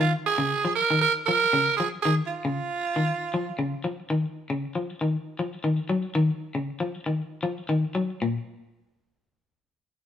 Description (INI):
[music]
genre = afrobeat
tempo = 117 BPM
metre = 4/4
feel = swing 53% on 16ths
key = unclear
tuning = A4 = 440 Hz
[part]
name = breathy tenor saxophone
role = melody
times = 0.0-3.8 s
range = F4 to Bb4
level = -23 LUFS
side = right 5 dB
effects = none
[part]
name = electric guitar at the edge of break-up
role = arpeggios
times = 0.0-8.4 s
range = Bb2 to Gb3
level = -26 LUFS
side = left 2 dB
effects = none
[sound]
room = moderate stone room reverb, RT60 1.2 s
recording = band playing live in one room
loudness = -24 LUFS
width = side -9 dB against mid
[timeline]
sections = 0.0-8.2 A section; 8.2-10.1 B section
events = none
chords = 0.0 Bbm; 4.1 Dbadd9; 8.2 N.C.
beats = | 0.00 0.51 1.03 1.54 | 2.05 2.57 3.08 3.59 | 4.11 4.62 5.13 5.65 | 6.16 6.67 7.18 7.70 | 8.21